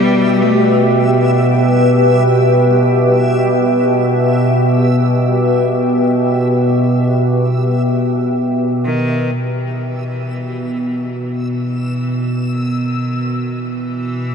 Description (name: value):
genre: dark ambient drone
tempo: free time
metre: none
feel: none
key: unclear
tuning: A4 = 440 Hz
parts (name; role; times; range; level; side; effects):
- bright cello; melody; 0.0-0.9, 8.8-14.3 s; D#3 to A3; -23 LUFS; left 1 dB; ping-pong delay
- granular cloud pad; sustained chords; 0.0-9.4 s; G4 to G5; -17 LUFS; left 1 dB; built-in reverb
- analog drone; drone; 0.0-14.3 s; B2; -14 LUFS; equal; chorus
- backwards swelling texture; texture; 0.0-14.3 s; E5 to E6; -28 LUFS; right 3 dB; built-in reverb
room: wet huge ambient reverb, RT60 7.8 s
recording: dark, warm production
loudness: -12 LUFS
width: side -6 dB against mid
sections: 0.0-9.4 A section; 9.4-14.3 B section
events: fade-out on synth texture 0.0-9.4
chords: 0.0 Em; 9.4 E5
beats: free time